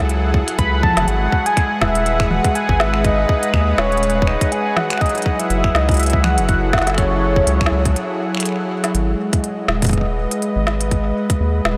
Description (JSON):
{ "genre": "IDM", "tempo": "122 BPM", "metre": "4/4", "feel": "swing 56% on 16ths", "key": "G# phrygian", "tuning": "A4 = 440 Hz", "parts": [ { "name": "warm analog pad", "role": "sustained chords", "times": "0.0-11.8 s", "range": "F#3 to F#5", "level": "-24 LUFS", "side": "equal", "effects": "chorus" }, { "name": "round analog bass", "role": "bass", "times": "0.0-11.8 s", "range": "D#1 to D#2", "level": "-22 LUFS", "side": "equal", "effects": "tube saturation" }, { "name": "organic electronic drum kit", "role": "drums", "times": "0.1-11.8 s", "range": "finger snaps, hi-hat, snare drum, toms", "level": "-26 LUFS", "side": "equal", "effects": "none" }, { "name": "electronic kick drum", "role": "drums", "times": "0.3-11.4 s", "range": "none", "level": "-21 LUFS", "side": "equal", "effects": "none" }, { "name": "warm velvety synth lead", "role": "melody", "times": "0.6-8.5 s", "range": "C#5 to B5", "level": "-23 LUFS", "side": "equal", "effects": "chorus, tremolo, tape echo" } ], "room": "wet huge ambient reverb, RT60 8.2 s", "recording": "dreamy mix soaked in reverb", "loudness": "-17 LUFS", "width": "mono", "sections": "0.0-8.9 A section; 8.9-11.8 B section", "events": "break 8.0-8.9; drum fill 8.7", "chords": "0.0 F#m9; 1.1 G#m7; 5.0 F#m9; 8.9 G#m7" }